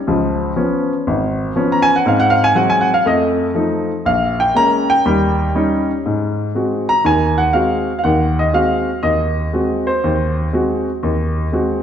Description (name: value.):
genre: jazz.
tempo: 120 BPM.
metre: 4/4.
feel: swing 67% on 8ths.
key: Ab mixolydian.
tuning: A4 = 442 Hz.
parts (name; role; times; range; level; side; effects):
warm baby grand piano; solo; 0.1-11.8 s; Ab1 to Bb5; -14 LUFS; equal; none.
room: wet scoring stage reverb, RT60 1.6 s.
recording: recorded in a church or concert hall.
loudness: -14 LUFS.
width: side -8 dB against mid.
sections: 0.0-6.0 A section; 6.0-11.8 B section.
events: grand piano solo 0.0-6.0.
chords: 0.1 Db7; 2.1 Ab7; 3.1 F7; 4.1 Bbm7; 5.1 Eb7; 6.0 Ab7.